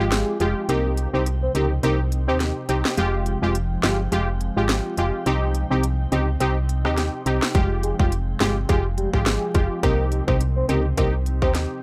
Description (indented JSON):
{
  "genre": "dancehall",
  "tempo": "105 BPM",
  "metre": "4/4",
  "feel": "swing 56% on 16ths",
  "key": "F minor",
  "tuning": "A4 = 438 Hz",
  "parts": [
    { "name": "synth brass stab", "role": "accompaniment", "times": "0.0-11.8 s", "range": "Ab3 to G4", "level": "-27 LUFS", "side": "equal", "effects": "chorus" },
    { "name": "glassy FM pad", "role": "sustained chords", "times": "0.0-11.8 s", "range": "C3 to G5", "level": "-35 LUFS", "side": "equal", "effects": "ensemble chorus, built-in reverb, sidechain pumping" },
    { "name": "solid FM bass", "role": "bass", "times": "0.0-11.7 s", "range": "F1 to Eb2", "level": "-26 LUFS", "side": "equal", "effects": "none" },
    { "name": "soft octave-layered synth lead", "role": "melody", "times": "0.1-2.4, 7.5-11.5 s", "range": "G4 to C5", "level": "-30 LUFS", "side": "equal", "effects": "chorus, tremolo, tape echo" },
    { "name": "island pop drum kit", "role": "drums", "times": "0.1-11.7 s", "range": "hi-hat, kick drum, rim click, snare drum", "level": "-26 LUFS", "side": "equal", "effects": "none" }
  ],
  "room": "little or no reverb",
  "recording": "dry, gritty hardware recording",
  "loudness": "-22 LUFS",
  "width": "mono",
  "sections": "0.0-11.8 A section",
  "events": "break 0.0-7.5",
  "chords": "0.0 Fmadd9; 0.7 Cm; 3.0 Fmadd9; 5.3 Cm; 7.5 Fmadd9; 9.8 Cm"
}